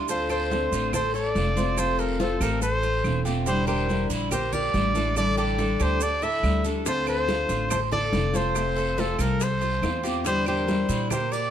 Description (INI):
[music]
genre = latin, Cuban son and guajira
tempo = 142 BPM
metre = 4/4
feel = straight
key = D minor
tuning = A4 = 437 Hz
[part]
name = picked steel-string acoustic guitar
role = accompaniment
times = 0.0-11.1 s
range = C3 to F4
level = -30 LUFS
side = left 2 dB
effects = none
[part]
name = Cuban tres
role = arpeggios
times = 0.0-11.5 s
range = E4 to C5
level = -32 LUFS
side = right 2 dB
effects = none
[part]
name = upright bass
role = bass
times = 0.0-11.5 s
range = E1 to Bb2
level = -28 LUFS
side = equal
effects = none
[part]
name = clear trumpet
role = melody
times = 0.1-11.5 s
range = A4 to E5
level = -27 LUFS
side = right 1 dB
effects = plate reverb
[part]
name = flamenco guitar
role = second line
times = 0.1-11.5 s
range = F4 to Bb4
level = -32 LUFS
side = left 4 dB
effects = none
[part]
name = congas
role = percussion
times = 0.1-11.5 s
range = none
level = -34 LUFS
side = equal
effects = none
[part]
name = guiro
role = percussion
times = 0.1-11.5 s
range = none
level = -41 LUFS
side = left 1 dB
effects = none
[part]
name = maracas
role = percussion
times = 0.1-11.5 s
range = none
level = -38 LUFS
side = right 8 dB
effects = none
[part]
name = claves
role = percussion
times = 0.3-11.3 s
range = none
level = -40 LUFS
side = right 7 dB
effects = none
[part]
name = bongos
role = percussion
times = 6.9-11.5 s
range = none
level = -36 LUFS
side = left 6 dB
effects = none
[sound]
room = moderate studio reverb, RT60 0.7 s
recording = none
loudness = -22 LUFS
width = side -9 dB against mid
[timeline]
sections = 0.1-11.5 A section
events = none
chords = 0.1 Dm7; 1.8 Fmaj7; 3.5 Em7b5; 5.2 A7sus4; 6.9 Dm7; 8.6 Fmaj7; 10.3 Em7b5